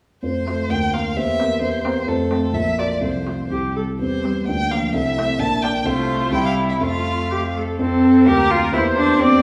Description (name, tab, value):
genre	quick classical-period movement for piano quartet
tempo	120-133 BPM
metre	2/4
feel	rubato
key	F major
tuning	A4 = 440 Hz
part	rich violin	melody	0.2-9.1 s	A4 to A5	-27 LUFS	equal	none
part	dark grand piano	accompaniment	0.2-9.4 s	Bb1 to C5	-24 LUFS	equal	none
part	rich cello	second line	0.5-9.4 s	F3 to G4	-23 LUFS	equal	none
part	rich viola	accompaniment	0.5-9.4 s	Bb3 to D5	-27 LUFS	equal	none
room	wet recital hall reverb, RT60 1.7 s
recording	studio reverb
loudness	-19 LUFS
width	mono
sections	0.2-7.8 A section; 7.8-9.4 A section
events	none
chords	0.2 F; 0.7 Bb/D; 1.2 C7/E; 2.1 F; 2.5 Bb; 3.0 F/C; 3.5 C; 4.0 C/E; 4.5 Bb/D; 4.9 Am/C; 5.4 Gm/Bb; 5.9 F/C; 6.3 C; 6.8 F; 8.3 Bb/D; 8.7 C7/E